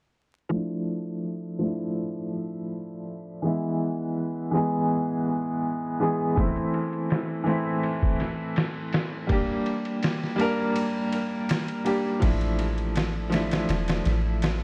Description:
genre	trip hop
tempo	82 BPM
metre	4/4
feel	straight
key	unclear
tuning	A4 = 440 Hz
part	bright upright piano	accompaniment	0.5-14.6 s	E3 to Bb4	-28 LUFS	equal	tremolo, tape echo
part	trip hop sampler-style drum kit	drums	6.4-14.6 s	crash cymbal, kick drum, ride cymbal, snare drum	-31 LUFS	equal	none
part	soft 808-style bass	bass	12.2-14.6 s	E1 to A1	-29 LUFS	equal	none
room	light reverb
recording	echo-heavy mix, vinyl crackle, low-pass filter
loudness	-27 LUFS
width	mono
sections	0.5-12.2 A section; 12.2-14.6 B section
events	filter sweep 0.5-12.2; kick drops out 10.8-12.2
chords	0.5 Dmadd9; 3.4 E; 6.4 Am; 9.3 Gm; 12.2 Dmadd9/A

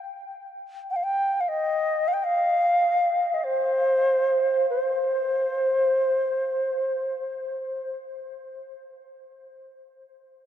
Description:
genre	world meditative, free-time meditation music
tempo	free time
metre	none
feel	none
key	C minor pentatonic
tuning	A4 = 441 Hz
part	bright reedy xiao	solo	0.9-8.0 s	C5 to G5	-23 LUFS	equal	none
room	wet huge ambient reverb, RT60 8.1 s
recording	dark, warm production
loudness	-22 LUFS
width	side -10 dB against mid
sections	0.0-8.8 A section; 8.8-10.5 B section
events	none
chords	none

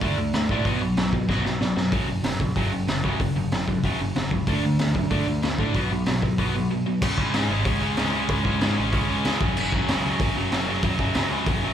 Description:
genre	punk rock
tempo	188 BPM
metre	4/4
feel	straight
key	F# minor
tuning	A4 = 439 Hz
part	cranked stack guitar	riff	0.0-11.7 s	F#2 to D4	-28 LUFS	left 10 dB	overdrive, slapback echo
part	distorted electric guitar	riff	0.0-11.7 s	F#2 to D4	-27 LUFS	right 8 dB	distortion, slapback echo
part	growling picked electric bass	bass	0.0-11.7 s	F#1 to B2	-28 LUFS	equal	overdrive
part	raw garage drum kit	drums	0.0-11.5 s	crash cymbal, hi-hat, kick drum, snare drum	-26 LUFS	equal	none
room	small room ambience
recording	live gig heard through the venue's PA, club reverb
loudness	-21 LUFS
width	side -9 dB against mid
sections	0.0-7.0 A section; 7.0-11.7 B section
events	drum fill 1.3-1.9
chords	0.0 D5; 0.7 B5; 1.9 F#5; 4.5 D5; 5.8 B5; 7.0 C#5; 9.4 F#5

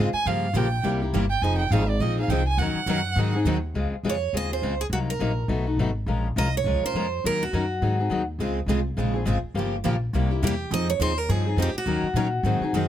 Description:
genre	acoustic string swing (jazz manouche)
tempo	207 BPM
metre	4/4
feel	swing 59% on 8ths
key	F minor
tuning	A4 = 440 Hz
part	picked steel-string acoustic guitar	accompaniment	0.0-12.9 s	B2 to Bb4	-27 LUFS	left 4 dB	none
part	picked steel-string acoustic guitar	accompaniment	0.0-3.6, 8.4-12.8 s	C3 to Bb4	-31 LUFS	right 8 dB	none
part	upright bass	bass	0.0-12.9 s	F1 to Bb2	-26 LUFS	equal	none
part	dark violin	second line	0.1-3.5 s	D5 to Ab5	-28 LUFS	right 5 dB	none
part	picked steel-string acoustic guitar	melody	4.1-8.2, 10.5-12.9 s	Gb4 to Eb5	-27 LUFS	right 2 dB	none
room	little or no reverb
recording	close, detailed microphones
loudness	-22 LUFS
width	side -11 dB against mid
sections	0.0-3.7 A section; 3.7-12.9 B section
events	violin solo 0.0-3.7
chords	0.3 Gm7b5; 0.8 C7; 1.4 Fm7; 2.6 Ebm7; 3.2 Ab7; 3.7 Dbmaj9; 4.9 Cm7b5; 5.5 B7; 6.1 Bbm7; 7.2 Ebm7; 7.8 Ab7; 8.4 Dbmaj7; 9.6 Gm7b5; 10.1 C7; 10.7 Fm7; 11.9 Ebm7

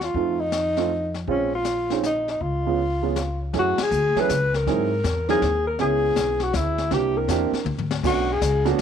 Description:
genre	jazz, small-group swing and bop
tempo	160 BPM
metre	3/4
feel	swing 65% on 8ths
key	unclear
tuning	A4 = 440 Hz
part	dark alto saxophone	melody	0.0-8.7 s	Db4 to B4	-23 LUFS	left 2 dB	none
part	upright bass	bass	0.0-8.8 s	Bb1 to G#2	-27 LUFS	left 1 dB	none
part	jazz brush drum kit	drums	0.0-8.8 s	brushed snare drum, crash cymbal, hi-hat, kick drum, ride cymbal, snare drum, toms	-30 LUFS	left 7 dB	none
part	dark baby grand piano	accompaniment	0.2-8.8 s	F#3 to A#4	-26 LUFS	right 13 dB	none
room	light reverb, studio ambience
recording	1960s-style stereo with parts hard left and right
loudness	-20 LUFS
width	side -8 dB against mid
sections	0.0-3.5 A section; 3.5-8.8 B section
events	band accent 3.7; drum fill 7.7-8.0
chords	0.2 F7; 1.3 Bbm9; 2.4 Db7; 3.5 F#m9; 4.7 G#7b13; 5.8 C#m7; 6.9 C9; 8.0 Bm9

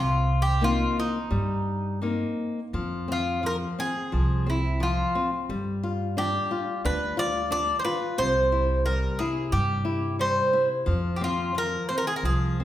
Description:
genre	fado-style ballad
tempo	88 BPM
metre	4/4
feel	rubato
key	F harmonic minor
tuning	A4 = 440 Hz
part	Greek bouzouki	melody	0.0-12.6 s	Eb4 to D5	-26 LUFS	equal	none
part	flamenco guitar	accompaniment	0.0-12.6 s	C3 to F4	-29 LUFS	left 2 dB	none
part	upright bass	bass	0.0-12.6 s	C2 to G2	-28 LUFS	right 1 dB	none
room	wet recital hall reverb, RT60 1.2 s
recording	recorded in a church or concert hall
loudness	-23 LUFS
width	side -12 dB against mid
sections	0.0-2.7 A section; 2.7-12.6 B section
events	none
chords	0.0 Cm7; 2.7 Fm; 5.5 G5; 8.2 C; 10.9 Fm

